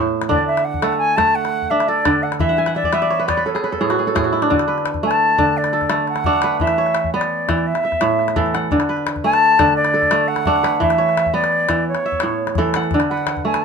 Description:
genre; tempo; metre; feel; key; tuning
west african traditional, West African string and xylophone music; 114 BPM (dotted quarters); 12/8; straight; D lydian; A4 = 441 Hz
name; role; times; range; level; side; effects
kora; arpeggios; 0.0-13.6 s; A2 to G#5; -18 LUFS; right 2 dB; none
calabash; percussion; 0.2-13.6 s; none; -25 LUFS; left 5 dB; none
mellow silver concert flute; melody; 0.3-13.6 s; C#5 to A5; -18 LUFS; left 1 dB; none
room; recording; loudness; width
light reverb; minimal, uncompressed stereo recording; -15 LUFS; side -6 dB against mid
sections
0.0-4.5 A section; 4.5-13.6 B section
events
kora fill 2.4-4.5; flute solo 4.5-13.6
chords
0.3 D; 2.4 E5; 3.5 N.C.; 4.5 D; 6.6 E5; 7.7 A5; 8.7 D; 10.8 E5; 11.9 A; 12.9 D

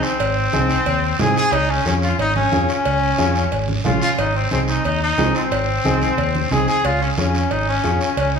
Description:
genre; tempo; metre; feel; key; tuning
latin, cumbia; 180 BPM; 4/4; straight; unclear; A4 = 441 Hz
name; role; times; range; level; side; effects
warm trumpet; second line; 0.0-8.4 s; C4 to Ab4; -20 LUFS; left 2 dB; none
clear upright piano; accompaniment; 0.0-8.1 s; C4 to Ab4; -25 LUFS; left 2 dB; none
guiro; percussion; 0.0-8.4 s; none; -30 LUFS; right 3 dB; none
fingered electric bass; bass; 0.2-8.4 s; Ab1 to Ab2; -22 LUFS; right 1 dB; none
cowbell and timbales; percussion; 0.2-8.3 s; none; -26 LUFS; right 2 dB; none
congas; percussion; 0.5-8.0 s; none; -27 LUFS; right 2 dB; none
room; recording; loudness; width
wet large studio reverb, RT60 1.2 s; band playing live in one room; -16 LUFS; side -6 dB against mid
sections
0.0-8.4 A section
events
trumpet solo 0.0-8.4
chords
0.0 Ab; 1.5 Db; 4.2 Ab; 6.8 Db

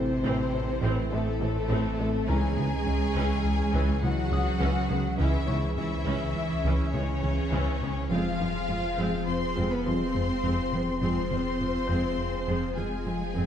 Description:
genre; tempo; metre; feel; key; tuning
cinematic, hybrid orchestral and electronic film score; 103 BPM; 5/4; straight; unclear; A4 = 437 Hz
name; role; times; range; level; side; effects
warm symphonic violin section; melody; 0.0-13.5 s; A4 to C6; -35 LUFS; left 6 dB; none
rich symphonic violin section; second line; 0.0-13.5 s; A3 to C5; -35 LUFS; left 2 dB; none
rich studio viola section; accompaniment; 0.0-13.5 s; D3 to C#4; -36 LUFS; right 1 dB; none
chorused pulse-width pad; sustained chords; 0.0-13.5 s; E3 to C#5; -35 LUFS; right 2 dB; phaser
harp-like synth pluck; arpeggios; 0.0-13.5 s; C#3 to A4; -37 LUFS; right 1 dB; none
smooth gliding synth bass; riff; 0.0-13.5 s; C#2 to A3; -32 LUFS; left 2 dB; none
clear symphonic cello section; bass; 0.0-13.5 s; A2 to C4; -33 LUFS; right 2 dB; none
punchy sub bass; bass; 0.0-13.5 s; F1 to C#2; -33 LUFS; equal; none
rich symphonic double bass section; bass; 0.0-13.4 s; A1 to F2; -34 LUFS; right 3 dB; none
felt-muted upright piano; texture; 0.0-13.5 s; C#5 to G6; -45 LUFS; left 4 dB; none
mellow French horn section; sustained chords; 1.1-13.0 s; G#3 to F4; -41 LUFS; left 4 dB; none
room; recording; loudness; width
moderate scoring stage reverb, RT60 1.9 s; dark, warm production; -25 LUFS; side -9 dB against mid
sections
0.0-13.5 A section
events
none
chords
0.0 Am; 2.3 C#m; 8.1 Fm

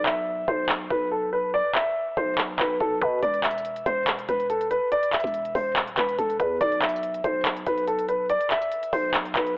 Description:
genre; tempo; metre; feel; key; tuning
hip hop, trap; 142 BPM; 4/4; half-time; unclear; A4 = 440 Hz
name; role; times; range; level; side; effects
growling 808-style bass; bass; 0.0-9.6 s; D1 to B2; -32 LUFS; equal; none
dark baby grand piano; melody; 0.1-9.5 s; A4 to E5; -24 LUFS; equal; none
trap drum kit; drums; 0.1-9.6 s; handclaps, hi-hat, kick drum; -26 LUFS; equal; none
room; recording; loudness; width
light reverb, digital ambience; worn, warbling old tape, cassette tape, warbly pitch drift, telephone sound; -22 LUFS; side -26 dB against mid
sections
0.0-9.6 A section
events
break 0.0-3.2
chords
0.0 Bsus4; 3.2 N.C.; 6.6 Bsus4

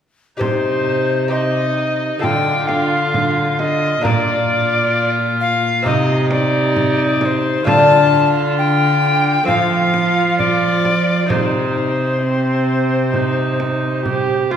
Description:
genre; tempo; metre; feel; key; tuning
classical, renaissance-style consort dance; 66 BPM; 4/4; straight; C dorian; A4 = 440 Hz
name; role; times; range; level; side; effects
bright alto recorder; melody; 0.4-14.5 s; C5 to A5; -18 LUFS; left 3 dB; none
warm viola; second line; 0.4-14.6 s; C4 to G4; -21 LUFS; right 2 dB; none
lute; accompaniment; 0.4-14.6 s; Bb2 to C5; -22 LUFS; left 2 dB; none
dark cello; bass; 0.4-14.6 s; Bb2 to F3; -20 LUFS; right 2 dB; none
frame drum; percussion; 0.4-14.6 s; none; -25 LUFS; right 4 dB; none
room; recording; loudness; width
wet scoring stage reverb, RT60 1.8 s; recorded in a church or concert hall; -14 LUFS; side -8 dB against mid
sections
0.4-14.6 A section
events
none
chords
0.4 Cm; 2.2 Dm; 4.0 Bb; 5.9 Cm; 7.7 Dm; 9.5 F; 11.3 Cm

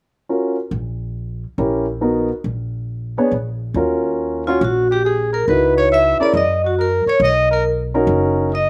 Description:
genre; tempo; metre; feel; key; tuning
jazz, small-group swing and bop; 139 BPM; 4/4; swing 67% on 8ths; Eb minor; A4 = 438 Hz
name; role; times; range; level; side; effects
warm concert grand piano; accompaniment; 0.3-8.5 s; B3 to Db5; -20 LUFS; equal; none
upright bass; bass; 0.7-8.7 s; F#1 to Gb2; -26 LUFS; equal; none
vibraphone with medium hard mallets; melody; 4.5-8.7 s; F4 to Fb5; -18 LUFS; equal; slapback echo
clear trumpet; second line; 4.5-8.7 s; F4 to Fb5; -24 LUFS; equal; slapback echo
room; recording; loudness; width
little or no reverb; recorded outdoors, with no room sound; -18 LUFS; mono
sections
0.3-3.8 A section; 3.8-8.7 B section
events
none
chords
0.3 Bbm; 1.2 Bbdim7; 2.0 Bmaj7/A#; 2.9 Bb7b9; 3.8 Ebm9; 5.5 Dbm11; 6.3 Gb6; 7.2 Bmaj9

